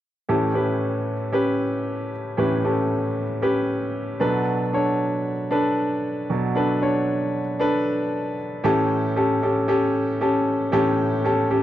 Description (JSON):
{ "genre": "pop", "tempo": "115 BPM", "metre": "4/4", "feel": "straight", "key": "unclear", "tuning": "A4 = 440 Hz", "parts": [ { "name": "bright grand piano", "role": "accompaniment", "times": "0.3-11.6 s", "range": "A2 to C#5", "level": "-20 LUFS", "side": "equal", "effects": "none" } ], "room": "light reverb, studio ambience", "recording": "dry, close 1970s-style studio recording", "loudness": "-20 LUFS", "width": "side -12 dB against mid", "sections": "0.3-8.6 A section; 8.6-11.6 B section", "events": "none", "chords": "0.3 A7; 4.2 Bm7; 8.6 A7" }